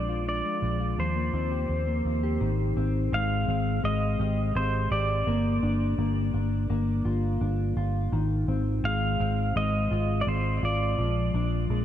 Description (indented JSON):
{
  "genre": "dream pop",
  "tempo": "84 BPM",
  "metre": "4/4",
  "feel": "straight",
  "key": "Ab lydian",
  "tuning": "A4 = 441 Hz",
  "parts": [
    { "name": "pedal steel guitar", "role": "melody", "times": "0.0-11.8 s", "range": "C5 to F5", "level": "-31 LUFS", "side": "right 1 dB", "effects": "tape echo" },
    { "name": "mellow electric guitar", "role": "arpeggios", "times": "0.0-11.8 s", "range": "Eb3 to G4", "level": "-29 LUFS", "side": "left 3 dB", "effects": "analog chorus, tape echo" },
    { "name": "vintage muted fingered electric bass", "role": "bass", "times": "0.0-11.8 s", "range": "G1 to Eb2", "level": "-27 LUFS", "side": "right 1 dB", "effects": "none" }
  ],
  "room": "light reverb, digital ambience",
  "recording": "dark, warm production",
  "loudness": "-24 LUFS",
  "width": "side -10 dB against mid",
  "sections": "0.0-2.4 A section; 2.4-11.8 B section",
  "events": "none",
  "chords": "0.0 Bb7; 1.0 Eb69; 2.4 Abmaj7; 5.3 Gm7; 8.1 Fm7/Ab; 11.0 Bb7"
}